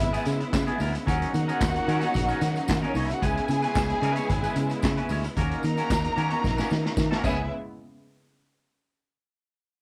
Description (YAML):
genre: disco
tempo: 112 BPM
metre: 4/4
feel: straight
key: C# dorian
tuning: A4 = 440 Hz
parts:
  - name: warm studio violin section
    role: second line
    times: 0.0-7.5 s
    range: C#4 to A#5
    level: -33 LUFS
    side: equal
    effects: cassette tape
  - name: clean electric guitar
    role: accompaniment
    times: 0.0-7.4 s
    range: F#3 to C#5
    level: -35 LUFS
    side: equal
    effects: cassette tape
  - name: rich studio string section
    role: sustained chords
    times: 0.0-7.5 s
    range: C#3 to E4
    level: -35 LUFS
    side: equal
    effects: cassette tape
  - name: fingered electric bass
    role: bass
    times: 0.0-7.5 s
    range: G#1 to D#3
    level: -30 LUFS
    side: equal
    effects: none
  - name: vintage drum kit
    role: drums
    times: 0.0-7.4 s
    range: crash cymbal, handclaps, hi-hat, kick drum, snare drum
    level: -32 LUFS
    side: equal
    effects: cassette tape
  - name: tambourine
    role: percussion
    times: 0.0-7.5 s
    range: none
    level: -48 LUFS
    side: equal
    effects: none
  - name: congas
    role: percussion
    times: 0.3-7.5 s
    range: none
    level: -40 LUFS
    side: equal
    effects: none
room: little or no reverb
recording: home recording on cassette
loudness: -26 LUFS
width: mono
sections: 0.0-7.5 A section; 7.5-9.7 B section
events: drum fill 6.4-7.5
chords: 0.0 C#m7; 1.1 D#m7; 3.2 C#m7; 5.4 D#m7; 7.2 C#m7; 7.5 N.C.